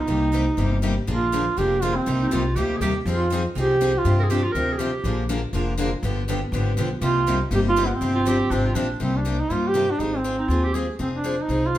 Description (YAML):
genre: acoustic string swing (jazz manouche)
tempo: 242 BPM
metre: 4/4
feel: swing 57% on 8ths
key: C minor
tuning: A4 = 439 Hz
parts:
  - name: warm duduk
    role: melody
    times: 0.0-4.2, 7.0-11.8 s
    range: B3 to G4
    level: -23 LUFS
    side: right 2 dB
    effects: none
  - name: upright bass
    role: bass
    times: 0.0-11.8 s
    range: F1 to G2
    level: -25 LUFS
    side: equal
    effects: none
  - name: picked steel-string acoustic guitar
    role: accompaniment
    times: 0.1-11.8 s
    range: C3 to Ab4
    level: -27 LUFS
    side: left 3 dB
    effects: none
  - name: picked steel-string acoustic guitar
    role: accompaniment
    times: 0.1-8.9 s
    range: C3 to Bb4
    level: -32 LUFS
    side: right 4 dB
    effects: none
  - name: clear clarinet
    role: second line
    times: 2.2-5.3, 8.2-10.9 s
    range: D4 to Bb4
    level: -27 LUFS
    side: right 2 dB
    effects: none
room: wet large studio reverb, RT60 0.9 s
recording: band playing live in one room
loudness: -20 LUFS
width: side -13 dB against mid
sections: 0.0-1.1 A section; 1.1-9.0 B section; 9.0-11.8 A section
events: none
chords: 0.1 Cm7; 1.1 Bb7; 2.1 Cm7; 3.1 Fm7; 4.1 G7sus4; 5.0 Bb7; 6.0 G7; 7.0 Cm7; 8.0 G7sus4; 9.0 Cm7; 10.0 Ab6; 11.0 Fm7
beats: | 0.09 0.34 0.59 0.83 | 1.08 1.33 1.58 1.82 | 2.07 2.32 2.57 2.82 | 3.06 3.31 3.56 3.81 | 4.05 4.30 4.55 4.80 | 5.04 5.29 5.54 5.79 | 6.03 6.28 6.53 6.78 | 7.02 7.27 7.52 7.77 | 8.02 8.26 8.51 8.76 | 9.01 9.26 9.50 9.75 | 10.00 10.25 10.50 10.74 | 10.99 11.24 11.49 11.74